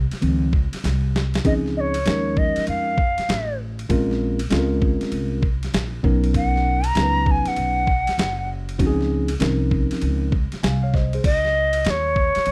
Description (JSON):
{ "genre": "hip hop, jazz-hop", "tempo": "98 BPM", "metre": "4/4", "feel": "swing 64% on 16ths", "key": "Db major", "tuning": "A4 = 441 Hz", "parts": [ { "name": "upright bass", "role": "bass", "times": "0.0-12.5 s", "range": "Gb1 to F2", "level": "-26 LUFS", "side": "equal", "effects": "none" }, { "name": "boom bap sampler-style drum kit", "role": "drums", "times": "0.1-12.5 s", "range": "crash cymbal, hi-hat, kick drum, ride cymbal, snare drum", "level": "-26 LUFS", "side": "equal", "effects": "none" }, { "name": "mellow tine electric piano", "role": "accompaniment", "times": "0.2-11.2 s", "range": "Eb3 to Ab5", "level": "-26 LUFS", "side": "equal", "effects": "none" }, { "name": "bright reedy bansuri", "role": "melody", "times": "1.5-12.5 s", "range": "Db5 to Bb5", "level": "-24 LUFS", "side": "equal", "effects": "none" } ], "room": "digital ambience", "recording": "dry, close 1970s-style studio recording", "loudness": "-21 LUFS", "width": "mono", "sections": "0.0-1.4 A section; 1.4-11.2 B section; 11.2-12.5 B section", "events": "tine electric piano solo 0.0-1.4; drum fill 0.8-1.4", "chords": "0.0 Dbmaj9; 3.9 Bbm7; 6.0 Cbmaj9; 8.8 Dbmaj9; 11.2 Dbsus2" }